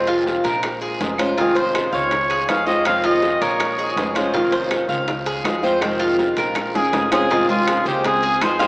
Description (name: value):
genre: latin, Cuban son and guajira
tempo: 162 BPM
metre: 4/4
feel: straight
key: F minor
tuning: A4 = 440 Hz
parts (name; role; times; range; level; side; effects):
- fingerpicked old ladder-braced acoustic guitar; accompaniment; 0.0-8.7 s; C3 to F4; -24 LUFS; equal; none
- Cuban tres; arpeggios; 0.0-8.7 s; F4 to F5; -21 LUFS; equal; none
- upright bass; bass; 0.0-8.7 s; F1 to F2; -35 LUFS; equal; none
- bongos; percussion; 0.1-8.7 s; none; -30 LUFS; left 1 dB; none
- timbales; percussion; 0.1-8.7 s; none; -29 LUFS; right 1 dB; none
- guiro; percussion; 0.3-8.7 s; none; -35 LUFS; equal; none
- claves; percussion; 0.6-8.6 s; none; -34 LUFS; equal; none
- warm trumpet; melody; 1.4-4.2, 6.8-8.7 s; F4 to F5; -21 LUFS; equal; none
- flamenco guitar; second line; 6.8-8.7 s; Ab3 to F4; -26 LUFS; equal; none
room: wet cathedral reverb, RT60 5.1 s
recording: in a vast, echoing space, small speaker sound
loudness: -16 LUFS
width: side -26 dB against mid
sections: 0.0-7.3 A section; 7.3-8.7 B section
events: drum fill 6.2-7.3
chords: 0.0 Fm7; 0.6 Bbm7; 1.4 Fm7; 2.1 Dbmaj7; 2.9 Fm7; 3.6 Bbm7; 4.3 Fm7; 5.1 Dbmaj7; 5.8 Fm7; 6.6 Bbm7; 7.3 Fm7; 8.0 Dbmaj7